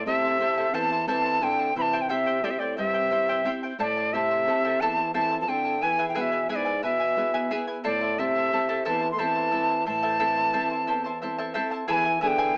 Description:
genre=andean folk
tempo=59 BPM (dotted quarters)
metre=6/8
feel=straight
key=A minor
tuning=A4 = 440 Hz
part: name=reedy quena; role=melody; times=0.0-12.6 s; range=D5 to C6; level=-24 LUFS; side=equal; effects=plate reverb
part: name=warm trombone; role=second line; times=0.0-12.6 s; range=G#2 to A3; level=-31 LUFS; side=equal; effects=none
part: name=charango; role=accompaniment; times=0.0-12.6 s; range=E4 to A5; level=-30 LUFS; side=equal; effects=none
part: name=nylon-string guitar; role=accompaniment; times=0.0-12.6 s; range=E2 to A4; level=-34 LUFS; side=equal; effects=none
room=moderate studio reverb, RT60 0.6 s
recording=small speaker sound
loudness=-22 LUFS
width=side -38 dB against mid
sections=0.0-11.9 A section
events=none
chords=0.0 Am; 1.8 C; 3.8 Am; 5.8 E; 7.8 Am; 11.9 E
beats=0.74 | 1.76 2.77 | 3.79 4.80 | 5.82 6.83 | 7.85 8.86 | 9.87 10.88 | 11.89

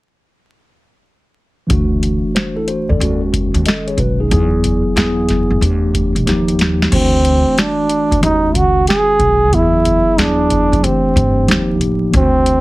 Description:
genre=hip hop, jazz-hop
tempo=92 BPM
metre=4/4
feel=swing 66% on 16ths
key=unclear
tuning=A4 = 441 Hz
part: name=mellow tine electric piano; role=accompaniment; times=1.7-12.6 s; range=D#3 to D#5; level=-18 LUFS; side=left 1 dB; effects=medium stereo tremolo
part: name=upright bass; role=bass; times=1.7-12.6 s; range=A1 to G2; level=-18 LUFS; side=equal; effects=none
part: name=booming analog drum machine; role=drums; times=1.7-12.6 s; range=crash cymbal, hi-hat, kick drum, snare drum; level=-18 LUFS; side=equal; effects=none
part: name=breathy trombone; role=melody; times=6.9-12.6 s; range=C4 to G#4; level=-14 LUFS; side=right 2 dB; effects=none
room=moderate small room reverb, RT60 0.5 s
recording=heavily compressed radio sound, multiband compression, vinyl crackle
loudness=-12 LUFS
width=side -19 dB against mid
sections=1.7-6.9 A section; 6.9-12.6 B section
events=drum fill 6.3-6.9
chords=1.7 Dadd9; 3.0 B69/D#; 4.3 E; 5.6 A9sus4/E; 6.3 D#add9; 6.9 D9; 8.2 B69; 9.5 E; 10.8 Am7/E; 11.5 D#add9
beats=| 1.70 2.35 3.01 3.66 | 4.31 4.96 5.62 6.27 | 6.92 7.57 8.22 8.88 | 9.53 10.18 10.83 11.48 | 12.14

